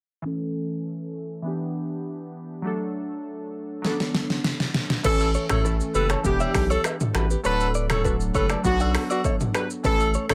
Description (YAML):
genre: afrobeats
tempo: 100 BPM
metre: 4/4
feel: straight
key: A mixolydian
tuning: A4 = 440 Hz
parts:
  - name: glassy digital keys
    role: accompaniment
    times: 0.2-10.3 s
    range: E3 to A4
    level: -32 LUFS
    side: equal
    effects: chorus, low-pass filter
  - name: deep house drum kit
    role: drums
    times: 3.8-10.3 s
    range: crash cymbal, finger snaps, hi-hat, kick drum, rim click, shaker, snare drum, toms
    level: -28 LUFS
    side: equal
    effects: none
  - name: warm horn section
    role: second line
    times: 5.0-10.3 s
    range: D3 to C#5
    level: -33 LUFS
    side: equal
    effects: none
  - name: direct-recorded clean electric guitar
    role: riff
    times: 5.0-10.3 s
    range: E4 to F#5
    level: -33 LUFS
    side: equal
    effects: digital delay
  - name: saturated sub bass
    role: bass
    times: 5.0-10.3 s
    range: D1 to B1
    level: -28 LUFS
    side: equal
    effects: none
  - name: clear alto saxophone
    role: melody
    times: 5.1-10.3 s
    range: F#4 to B4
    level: -28 LUFS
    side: equal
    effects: none
  - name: agogo bells and woodblock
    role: percussion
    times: 5.2-10.3 s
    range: none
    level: -36 LUFS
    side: equal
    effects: none
room: little or no reverb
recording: none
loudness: -25 LUFS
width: mono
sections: 0.2-5.0 A section; 5.0-10.3 B section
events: filter sweep on synth keys 0.2-5.0; drum fill 3.8-5.0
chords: 0.2 A; 1.4 Em7; 2.6 D; 3.8 Bm7; 5.0 A; 6.2 Em7; 7.4 D; 8.6 Bm7